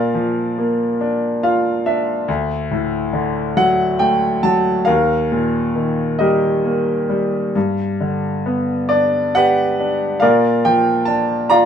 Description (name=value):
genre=classical, lyrical solo piano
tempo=46 BPM (dotted quarters)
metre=6/8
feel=rubato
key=unclear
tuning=A4 = 441 Hz
part: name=bright grand piano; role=solo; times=0.0-11.7 s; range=D2 to Bb5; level=-15 LUFS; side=equal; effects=none
room=moderate studio reverb, RT60 0.8 s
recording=minimal, uncompressed stereo recording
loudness=-15 LUFS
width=side -8 dB against mid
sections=0.0-11.7 A section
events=grand piano fill 1.0-2.3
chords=0.0 Bb; 2.3 D; 4.9 Eb; 7.6 G; 10.2 Bb